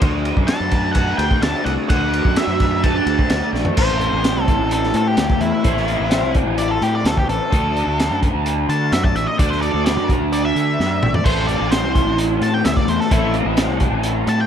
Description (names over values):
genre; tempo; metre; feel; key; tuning
psychedelic rock; 128 BPM; 4/4; straight; A dorian; A4 = 440 Hz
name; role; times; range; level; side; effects
raw garage guitar; riff; 0.0-14.5 s; A2 to C5; -20 LUFS; equal; overdrive, flanger
fuzz fingered electric bass; bass; 0.0-14.5 s; A1 to D3; -22 LUFS; equal; overdrive
crunchy breakbeat drum kit; drums; 0.0-14.4 s; crash cymbal, hi-hat, kick drum, ride cymbal, snare drum, splash cymbal, toms; -20 LUFS; equal; none
octave-fuzz lead guitar; melody; 0.5-14.5 s; E4 to A5; -23 LUFS; left 1 dB; distortion, analog delay
room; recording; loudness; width
small room ambience; none; -15 LUFS; side -8 dB against mid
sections
0.0-3.8 A section; 3.8-14.5 B section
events
drum fill 3.5, 10.8-11.2; lead electric guitar solo 3.8-14.5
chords
0.0 D; 3.8 Am; 7.5 Dadd9; 11.2 Am